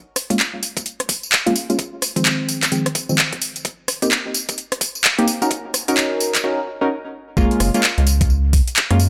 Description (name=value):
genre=UK garage, two-step garage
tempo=129 BPM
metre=4/4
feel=swing 61% on 16ths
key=F# major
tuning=A4 = 440 Hz
part: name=garage drum kit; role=drums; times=0.2-9.1 s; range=handclaps, hi-hat, rim click, tambourine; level=-21 LUFS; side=equal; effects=overdrive
part: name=deep mellow chord stab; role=stabs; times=0.3-9.0 s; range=D#3 to A#4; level=-23 LUFS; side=equal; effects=chorus, digital delay
part: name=electronic kick drum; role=drums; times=0.3-8.6 s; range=none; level=-22 LUFS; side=equal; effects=overdrive, high-pass filter on kick
part: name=rubbery square bass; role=bass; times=7.4-9.1 s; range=F#1 to F#2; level=-18 LUFS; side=equal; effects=tube saturation
room=light reverb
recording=none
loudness=-19 LUFS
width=mono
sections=0.0-7.4 A section; 7.4-9.1 B section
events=build-up 0.0-7.4; filter sweep on synth stab 0.0-7.4; break 6.4-7.4; drop 7.4-9.1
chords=0.0 G#sus24; 1.8 G#6/D#; 3.4 A#sus24; 5.3 F#6/C#; 7.4 F#maj9